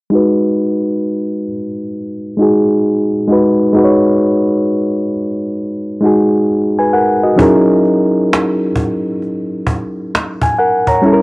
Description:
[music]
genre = lo-fi hip hop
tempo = 66 BPM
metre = 4/4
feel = swing 65% on 16ths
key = G# minor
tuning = A4 = 440 Hz
[part]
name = reed electric piano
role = accompaniment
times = 0.1-11.2 s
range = F#3 to A#5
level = -12 LUFS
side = equal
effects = low-pass filter
[part]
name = cajon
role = drums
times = 7.4-11.2 s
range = none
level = -16 LUFS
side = equal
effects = none
[sound]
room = light reverb, small room reverb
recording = dry, gritty hardware recording, cassette tape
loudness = -11 LUFS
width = side -22 dB against mid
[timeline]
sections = 0.1-11.2 A section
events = filter sweep on reed electric piano 0.1-11.2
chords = 0.1 G#m7; 7.4 F#13

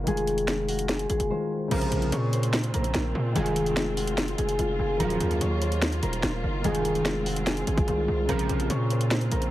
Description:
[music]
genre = hip hop, trap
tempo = 146 BPM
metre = 4/4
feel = half-time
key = Bb minor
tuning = A4 = 441 Hz
[part]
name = concert harp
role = melody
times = 0.0-9.5 s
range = F4 to Db5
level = -29 LUFS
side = equal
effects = low-pass filter, ping-pong delay
[part]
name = dark concert grand piano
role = accompaniment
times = 0.0-9.5 s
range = Db3 to Bb4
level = -32 LUFS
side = left 2 dB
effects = low-pass filter
[part]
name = distorted 808-style bass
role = bass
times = 0.0-9.5 s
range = Eb1 to Bb2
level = -28 LUFS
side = equal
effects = distortion
[part]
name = trap drum kit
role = drums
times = 0.1-9.5 s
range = crash cymbal, finger snaps, hi-hat, kick drum, snare drum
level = -30 LUFS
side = equal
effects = overdrive
[part]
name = dark symphonic string section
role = sustained chords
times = 1.7-9.5 s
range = Bb2 to F4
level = -35 LUFS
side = right 2 dB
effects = none
[part]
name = sync-sweep polysynth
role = stabs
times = 1.7-8.7 s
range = Bb1 to F3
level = -32 LUFS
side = right 4 dB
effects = chorus, phaser
[sound]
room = light reverb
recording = heavily compressed radio sound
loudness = -24 LUFS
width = side -14 dB against mid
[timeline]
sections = 0.0-1.7 A section; 1.7-9.5 B section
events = drums muted 1.3-1.7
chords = 0.1 Fm7; 1.7 Bbmadd9; 3.4 Fm7; 5.0 Ebmadd9; 6.6 Fm7; 8.3 Bbmadd9

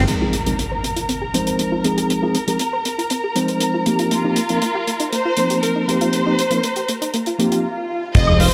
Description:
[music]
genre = nu-disco, nu disco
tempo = 119 BPM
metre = 4/4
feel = straight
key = unclear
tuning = A4 = 436 Hz
[part]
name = mellow tine electric piano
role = accompaniment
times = 0.0-8.4 s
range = F3 to C5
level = -23 LUFS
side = equal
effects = vintage 12-bit sampler grit, sidechain pumping
[part]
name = muted studio string section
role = sustained chords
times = 0.0-8.5 s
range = Bb4 to C6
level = -29 LUFS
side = equal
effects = sidechain pumping
[part]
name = fat analog bass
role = bass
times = 0.0-0.1, 8.2-8.5 s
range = F1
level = -19 LUFS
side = equal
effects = none
[part]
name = soft round pluck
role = arpeggios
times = 0.1-7.6 s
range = Bb3 to C5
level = -27 LUFS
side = equal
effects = chorus, sidechain pumping, delay
[part]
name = damped 70s drum kit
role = drums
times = 0.1-8.5 s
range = crash cymbal, hi-hat, woodblock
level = -27 LUFS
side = equal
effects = none
[part]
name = impact, swell and sub drop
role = sound effects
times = 0.1-2.1, 7.5-8.5 s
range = none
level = -28 LUFS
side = equal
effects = none
[part]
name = dark studio violin section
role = melody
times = 4.1-8.5 s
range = F4 to Eb5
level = -25 LUFS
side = equal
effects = delay
[part]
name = semi-hollow electric guitar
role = riff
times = 8.2-8.5 s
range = F4 to F5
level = -29 LUFS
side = equal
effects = ensemble chorus, dub echo
[part]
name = kick drum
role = drums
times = 8.2-8.3 s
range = none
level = -15 LUFS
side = equal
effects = none
[sound]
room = moderate lush hall reverb, RT60 1.8 s, small room ambience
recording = none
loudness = -19 LUFS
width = mono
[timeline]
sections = 0.1-8.2 A section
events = band accent 0.0; impact 0.1-2.1, 8.2-8.5; filter sweep on synth arpeggio sound 0.1-8.2; swell 7.5-8.2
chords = 0.1 Fm7; 3.9 Eb69

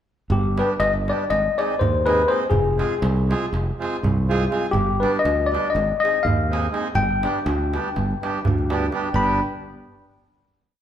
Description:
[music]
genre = balkan folk, Balkan wedding band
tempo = 244 BPM (eighths)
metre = 9/8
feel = straight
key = G phrygian dominant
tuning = A4 = 437 Hz
[part]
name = bright tine electric piano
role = melody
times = 0.3-9.4 s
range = G4 to B5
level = -22 LUFS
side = left 3 dB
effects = none
[part]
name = modern bright fingered electric bass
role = bass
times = 0.3-9.4 s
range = F1 to Eb2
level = -24 LUFS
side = equal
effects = none
[part]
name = darbuka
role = percussion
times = 0.3-9.4 s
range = none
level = -28 LUFS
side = right 2 dB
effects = none
[part]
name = accordion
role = accompaniment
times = 0.6-9.4 s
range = G3 to Ab4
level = -27 LUFS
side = right 3 dB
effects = none
[sound]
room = wet large studio reverb, RT60 1.4 s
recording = band playing live in one room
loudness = -19 LUFS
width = side -10 dB against mid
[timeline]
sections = 0.3-9.1 A section; 9.1-10.8 final chord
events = none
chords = 0.3 G; 1.3 Ab; 2.5 Fm; 4.7 G; 5.7 Ab; 6.9 G

